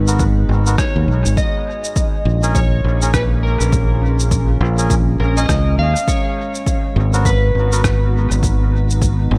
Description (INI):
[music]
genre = ambient dub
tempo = 102 BPM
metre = 4/4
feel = swing 60% on 16ths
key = G# dorian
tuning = A4 = 435 Hz
[part]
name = electric slide guitar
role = melody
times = 0.0-9.4 s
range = A#4 to E#5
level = -26 LUFS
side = equal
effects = dub echo
[part]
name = deep dark ambient pad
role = sustained chords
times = 0.0-9.4 s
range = G#3 to A#5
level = -28 LUFS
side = equal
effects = chorus, built-in reverb
[part]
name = fingered electric bass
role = bass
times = 0.0-9.4 s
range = G#1 to D#2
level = -18 LUFS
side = equal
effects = tube saturation
[part]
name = melodica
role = stabs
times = 0.1-7.8 s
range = B3 to A#4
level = -30 LUFS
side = equal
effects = dub echo
[part]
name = electronic cabasa and rim click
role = drums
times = 0.1-9.2 s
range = none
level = -28 LUFS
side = equal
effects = dub echo
[part]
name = electronic kick drum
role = drums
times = 0.2-9.2 s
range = none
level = -22 LUFS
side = equal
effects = overdrive
[sound]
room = light reverb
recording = none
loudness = -16 LUFS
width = mono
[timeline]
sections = 0.0-9.4 A section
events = none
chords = 0.0 G#m9; 1.4 A#m7; 6.1 G#m9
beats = 0.19 0.78 | 1.37 1.96 2.55 3.13 | 3.72 4.31 4.90 5.49 | 6.08 6.67 7.25 7.84 | 8.43 9.02